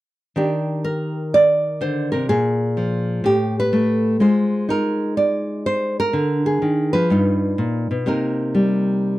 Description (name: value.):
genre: solo jazz.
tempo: 125 BPM.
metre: 4/4.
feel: swing 67% on 8ths.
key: Eb major.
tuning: A4 = 441 Hz.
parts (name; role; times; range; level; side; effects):
nylon-string guitar; solo; 0.4-9.2 s; G2 to D5; -17 LUFS; equal; none.
room: light reverb.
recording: dry, close 1970s-style studio recording.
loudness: -17 LUFS.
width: side -16 dB against mid.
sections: 0.4-9.2 A section.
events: none.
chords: 0.4 Ebmaj7; 2.3 Bb5; 3.2 N.C.; 4.2 Ab6; 6.1 Ddim; 7.1 G7alt; 8.1 Cm7.